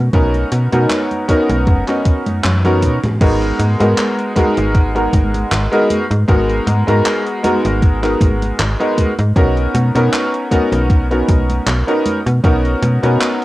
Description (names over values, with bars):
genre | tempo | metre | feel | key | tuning
vaporwave | 78 BPM | 4/4 | swing 54% on 16ths | unclear | A4 = 440 Hz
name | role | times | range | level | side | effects
slap-like FM bass | bass | 0.0-13.2 s | F#1 to B2 | -16 LUFS | equal | none
warm electric grand piano | accompaniment | 0.1-13.4 s | G#3 to A#4 | -16 LUFS | equal | lush chorus, cassette tape, analog delay
electronic kick drum | drums | 0.1-12.6 s | none | -13 LUFS | equal | cassette tape
gated 80s digital drum machine | drums | 0.1-13.4 s | congas, crash cymbal, handclaps, hi-hat, toms | -22 LUFS | equal | gated reverb, cassette tape
room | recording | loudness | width
light reverb | home recording on cassette | -12 LUFS | side -17 dB against mid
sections
0.0-3.2 A section; 3.2-13.4 B section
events
drum fill 2.4-3.2; band accent 2.4-2.8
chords
0.0 Bmaj7; 3.2 G#m9; 9.4 Bmaj7